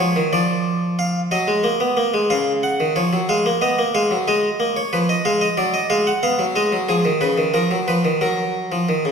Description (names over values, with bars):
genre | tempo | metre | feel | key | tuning
classical, baroque-style two-part invention for harpsichord | 61 BPM (dotted quarters) | 6/8 | straight | Eb minor | A4 = 441 Hz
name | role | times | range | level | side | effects
harpsichord | solo | 0.0-9.1 s | Db3 to Gb5 | -17 LUFS | equal | none
room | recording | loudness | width
wet recital hall reverb, RT60 1.7 s | recorded in a church or concert hall | -17 LUFS | side -6 dB against mid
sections
0.0-2.3 A section; 2.3-9.1 B section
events
none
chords
0.3 Dm/F; 1.3 Ebm/Gb; 2.3 Dbadd11; 3.3 Abm; 4.3 Fm7b5/Ab; 5.2 Ebmadd11; 6.2 G#m; 7.2 C#7; 8.2 F#